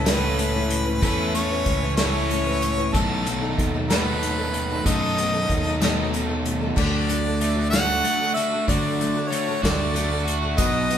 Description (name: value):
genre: folk rock and heartland rock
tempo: 63 BPM (dotted quarters)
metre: 6/8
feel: straight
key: unclear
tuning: A4 = 440 Hz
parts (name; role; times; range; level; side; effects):
- clear harmonica; melody; 0.0-11.0 s; A4 to F#5; -26 LUFS; left 1 dB; none
- picked twelve-string acoustic guitar; accompaniment; 0.0-11.0 s; B2 to B4; -28 LUFS; left 4 dB; none
- crunchy overdriven guitar; riff; 0.0-11.0 s; A2 to A4; -26 LUFS; right 2 dB; spring reverb
- fingered electric bass; bass; 0.0-11.0 s; B1 to D3; -27 LUFS; equal; none
- unplugged drum kit; drums; 0.1-11.0 s; crash cymbal, hi-hat, kick drum, snare drum; -25 LUFS; equal; none
- mellow tonewheel organ; sustained chords; 6.5-11.0 s; G3 to C5; -36 LUFS; right 4 dB; none
- bright grand piano; accompaniment; 10.6-11.0 s; F#4 to D#5; -35 LUFS; right 7 dB; none
- tambourine; percussion; 10.6-10.7 s; none; -36 LUFS; right 8 dB; none
room: moderate large studio reverb, RT60 1.2 s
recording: band playing live in one room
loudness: -20 LUFS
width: side -9 dB against mid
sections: 0.0-6.8 A section; 6.8-11.0 B section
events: none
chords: 0.0 Aadd9; 2.9 B7; 6.8 D